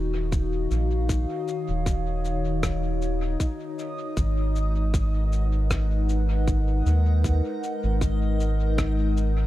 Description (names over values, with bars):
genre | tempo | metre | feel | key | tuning
ambient dub | 78 BPM | 4/4 | swing 54% on 16ths | unclear | A4 = 441 Hz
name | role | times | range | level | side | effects
warbly tape-like pad | sustained chords | 0.0-9.5 s | Eb3 to Gb5 | -30 LUFS | left 2 dB | chorus, built-in reverb
round analog bass | bass | 0.0-9.5 s | Eb1 to Eb2 | -23 LUFS | equal | none
backwards swelling texture | texture | 0.0-9.5 s | Eb4 to Eb5 | -35 LUFS | left 2 dB | built-in reverb
electronic cabasa and rim click | drums | 0.3-9.3 s | none | -35 LUFS | left 1 dB | dub echo
electronic kick drum | drums | 0.3-8.9 s | none | -26 LUFS | equal | none
room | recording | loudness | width
little or no reverb | echo-heavy mix | -22 LUFS | side -15 dB against mid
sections
0.0-9.5 A section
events
none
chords
0.0 Ebm7; 4.2 Abm7